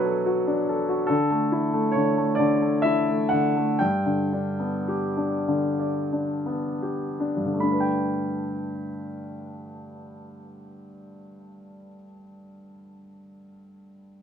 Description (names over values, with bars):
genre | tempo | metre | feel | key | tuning
classical, lyrical solo piano | 25-48 BPM (dotted quarters) | 6/8 | rubato | G major | A4 = 440 Hz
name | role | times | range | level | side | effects
warm baby grand piano | solo | 0.0-14.2 s | G2 to B5 | -24 LUFS | left 1 dB | none
room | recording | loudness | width
light reverb | minimal, uncompressed stereo recording | -22 LUFS | side -8 dB against mid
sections
0.0-7.6 A section; 7.6-12.2 B section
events
slowing down 1.1-7.6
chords
0.0 Bm7; 1.1 Dsus2; 3.8 G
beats
| 1.10 2.40 | 3.82 5.49 | 7.59 9.91